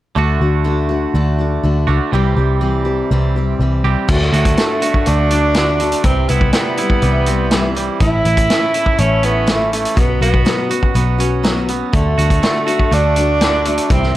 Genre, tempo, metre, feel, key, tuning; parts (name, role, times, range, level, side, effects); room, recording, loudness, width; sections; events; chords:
folk rock and heartland rock; 122 BPM; 4/4; straight; D major; A4 = 440 Hz
picked steel-string acoustic guitar; accompaniment; 0.2-14.2 s; A2 to G4; -21 LUFS; left 4 dB
twangy electric guitar; riff; 0.2-14.2 s; A2 to G4; -22 LUFS; right 9 dB
vintage muted picked electric bass; bass; 0.2-14.2 s; A1 to D2; -16 LUFS; equal
clear tenor saxophone; melody; 4.1-14.1 s; A3 to E4; -18 LUFS; right 1 dB; slapback echo
vintage drum kit; drums; 4.1-14.1 s; crash cymbal, hi-hat, kick drum, snare drum; -18 LUFS; equal
light reverb; -13 LUFS; side -15 dB against mid
0.2-4.1 A section; 4.1-14.2 B section
0.2 D; 2.1 C; 4.1 D; 6.0 C; 8.0 A; 10.0 Bsus2; 11.9 D